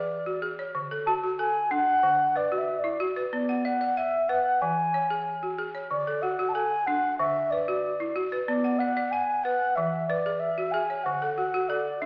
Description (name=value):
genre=west african traditional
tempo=93 BPM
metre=4/4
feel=straight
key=D lydian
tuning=A4 = 440 Hz
part: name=mellow baroque flute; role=melody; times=0.0-12.1 s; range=D5 to A5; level=-26 LUFS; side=equal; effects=none
part: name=balafon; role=arpeggios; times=0.0-12.1 s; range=D3 to F#5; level=-29 LUFS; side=equal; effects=none
room=wet recital hall reverb, RT60 1.5 s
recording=recorded in a church or concert hall, AM radio sound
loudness=-24 LUFS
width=side -37 dB against mid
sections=0.0-12.1 A section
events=none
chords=0.0 E (rootless); 0.8 D; 3.3 Bm; 4.6 E; 5.9 D; 8.5 Bm; 9.8 E; 11.1 D